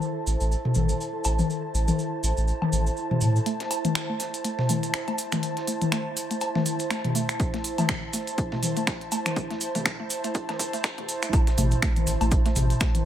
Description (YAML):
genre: minimal techno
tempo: 122 BPM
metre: 4/4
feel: swing 57% on 16ths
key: A minor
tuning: A4 = 440 Hz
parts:
  - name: cabasa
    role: percussion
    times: 0.0-13.0 s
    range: none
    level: -34 LUFS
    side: right 2 dB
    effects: none
  - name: airy breathy pad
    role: texture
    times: 0.0-13.1 s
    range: E4 to A5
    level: -31 LUFS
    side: right 2 dB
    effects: chorus, sidechain pumping
  - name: pulsing gated texture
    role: texture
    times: 0.0-3.5 s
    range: A4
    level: -40 LUFS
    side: equal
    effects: chorus, built-in reverb, sidechain pumping
  - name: saturated sub bass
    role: bass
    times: 0.3-3.4, 11.6-12.7 s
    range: A1 to A2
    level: -24 LUFS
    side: equal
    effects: sidechain pumping
  - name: electronic toms and woodblock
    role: percussion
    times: 0.7-13.0 s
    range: none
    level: -28 LUFS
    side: left 3 dB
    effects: overdrive
  - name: mallet-like synth pluck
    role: riff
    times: 3.5-12.9 s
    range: A3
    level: -33 LUFS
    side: right 1 dB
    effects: chorus, sidechain pumping, digital delay
  - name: dusty soul sampler-style drum kit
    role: drums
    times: 3.5-13.0 s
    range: hi-hat, snare drum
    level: -41 LUFS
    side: equal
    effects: none
  - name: minimal click drum kit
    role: drums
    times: 3.5-13.0 s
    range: finger snaps, hi-hat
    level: -30 LUFS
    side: equal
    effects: none
  - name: electronic kick drum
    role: drums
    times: 7.4-12.9 s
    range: none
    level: -25 LUFS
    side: equal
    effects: none
room: light reverb, digital ambience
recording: high-pass filter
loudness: -23 LUFS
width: side -11 dB against mid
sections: 0.0-3.5 A section; 3.5-11.3 B section; 11.3-13.1 C section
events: build-up 3.5-11.3; filter sweep on synth arpeggio sound 3.5-11.3; drop 11.3-13.1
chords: 0.0 Am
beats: 0.02 0.51 1.00 | 1.50 1.99 2.48 2.97 | 3.46 3.96 4.45 4.94 | 5.43 5.92 6.41 6.91 | 7.40 7.89 8.38 8.87 | 9.37 9.86 10.35 10.84 | 11.33 11.82 12.32 12.81